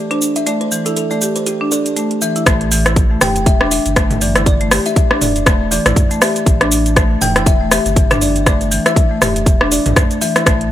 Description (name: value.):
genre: afro house.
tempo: 120 BPM.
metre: 4/4.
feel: swing 57% on 16ths.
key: A minor.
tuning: A4 = 439 Hz.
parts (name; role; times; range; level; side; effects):
buzzing kalimba; melody; 0.0-10.7 s; G4 to G5; -21 LUFS; left 2 dB; vintage 12-bit sampler grit, dub echo.
marimba with hard mallets; arpeggios; 0.1-10.6 s; E3 to G4; -19 LUFS; equal; sidechain pumping, dub echo.
house drum kit; drums; 0.1-10.7 s; cabasa, hi-hat, rim click, toms; -16 LUFS; equal; none.
warm sub bass; bass; 2.5-10.7 s; E1 to A1; -20 LUFS; equal; sidechain pumping.
electronic kick drum; drums; 2.5-10.6 s; none; -13 LUFS; equal; none.
room: light reverb.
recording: none.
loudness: -12 LUFS.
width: side -12 dB against mid.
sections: 0.0-2.5 A section; 2.5-10.7 B section.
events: filter sweep on marimba 0.0-2.5; drop 2.5-10.7.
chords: 0.0 A5.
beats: | 0.46 0.96 1.46 1.96 | 2.46 2.96 3.46 3.96 | 4.46 4.96 5.46 5.96 | 6.46 6.96 7.46 7.96 | 8.46 8.96 9.46 9.96 | 10.46.